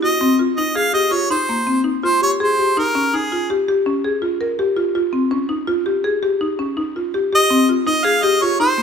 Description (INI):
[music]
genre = contemporary instrumental, contemporary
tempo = 165 BPM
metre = 5/4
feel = straight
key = unclear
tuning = A4 = 441 Hz
[part]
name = bright harmonica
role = melody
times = 0.0-3.5, 7.3-8.8 s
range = Ab4 to F5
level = -17 LUFS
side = right 1 dB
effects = none
[part]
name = buzzing marimba with medium hard mallets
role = arpeggios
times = 0.0-8.8 s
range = Bb3 to Bb4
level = -17 LUFS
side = left 1 dB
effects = none
[sound]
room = moderate recital hall reverb, RT60 1.5 s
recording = minimal, uncompressed stereo recording, faint mains hum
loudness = -16 LUFS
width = side -7 dB against mid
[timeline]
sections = 0.2-8.8 A section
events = none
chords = 0.2 Fm7; 3.9 Bbm7; 5.7 Dbadd9 (rootless); 7.5 Fm7